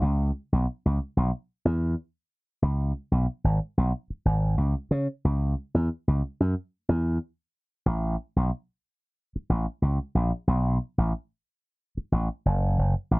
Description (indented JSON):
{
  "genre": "funk",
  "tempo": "92 BPM",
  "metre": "4/4",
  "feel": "straight",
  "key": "C# minor",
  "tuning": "A4 = 440 Hz",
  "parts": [
    { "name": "slap bass with an envelope filter", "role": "solo", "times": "0.0-13.2 s", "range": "F#1 to C#3", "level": "-23 LUFS", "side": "equal", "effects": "none" }
  ],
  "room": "moderate booth ambience, RT60 0.2 s",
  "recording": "dry, close 1970s-style studio recording",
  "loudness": "-24 LUFS",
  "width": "side -25 dB against mid",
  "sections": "0.0-7.9 A section; 7.9-13.2 B section",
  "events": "none",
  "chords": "none",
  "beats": "| 0.01 0.66 1.31 1.97 | 2.62 3.28 3.93 4.58 | 5.24 5.89 6.55 7.21 | 7.86 8.52 9.17 9.83 | 10.48 11.14 11.80 12.45 | 13.11"
}